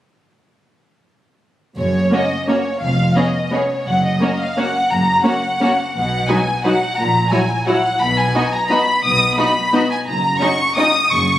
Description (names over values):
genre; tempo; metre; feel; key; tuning
classical, orchestral ballroom waltz; 174 BPM; 3/4; uneven beats, rubato; F# major; A4 = 440 Hz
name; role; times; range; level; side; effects
rich chamber violin section; melody; 1.8-11.4 s; C#5 to D#6; -17 LUFS; left 1 dB; none
warm studio cello section; bass; 1.8-11.4 s; E#2 to B2; -24 LUFS; right 1 dB; none
warm studio double bass section; bass; 1.8-11.4 s; E#1 to B1; -24 LUFS; right 1 dB; none
rich studio violin section; second line; 2.1-10.9 s; F#4 to D#5; -25 LUFS; left 1 dB; none
dark studio viola section; accompaniment; 2.1-10.9 s; F#3 to E4; -20 LUFS; equal; none
room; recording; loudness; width
moderate scoring stage reverb, RT60 1.6 s; recorded on a phone in the room, studio reverb; -14 LUFS; side -13 dB against mid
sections
1.8-11.4 A section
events
none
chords
1.8 F#; 2.8 C#7/E#; 3.9 F#; 5.9 B; 7.0 F#7/A#; 8.0 B; 10.1 Ebm7/Gb